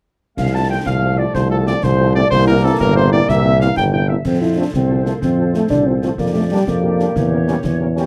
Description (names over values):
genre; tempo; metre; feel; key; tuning
military-style march for wind band; 124 BPM (dotted quarters); 6/8; straight; F major; A4 = 440 Hz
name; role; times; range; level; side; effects
mellow cornet; melody; 0.4-8.0 s; A4 to A5; -23 LUFS; equal; none
dark woodwind section; second line; 0.4-8.0 s; G4 to A5; -28 LUFS; equal; none
dark trombone section; sustained chords; 0.4-8.0 s; E3 to D4; -26 LUFS; equal; none
clear tuba; bass; 0.4-8.0 s; G1 to F2; -19 LUFS; equal; none
concert snare drum, clash cymbals and concert bass drum; drums; 0.4-8.1 s; none; -27 LUFS; equal; none
mellow French horn section; accompaniment; 0.5-8.0 s; F3 to G4; -26 LUFS; equal; none
dark euphonium; second line; 4.3-7.9 s; G3 to E4; -21 LUFS; equal; none
room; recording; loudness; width
moderate booth ambience, RT60 0.3 s; dark, warm production; -16 LUFS; mono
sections
0.4-4.3 A section; 4.3-8.1 B section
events
none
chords
0.4 F/C; 2.3 C7; 4.3 F; 6.2 Gm7/F; 7.2 Edim7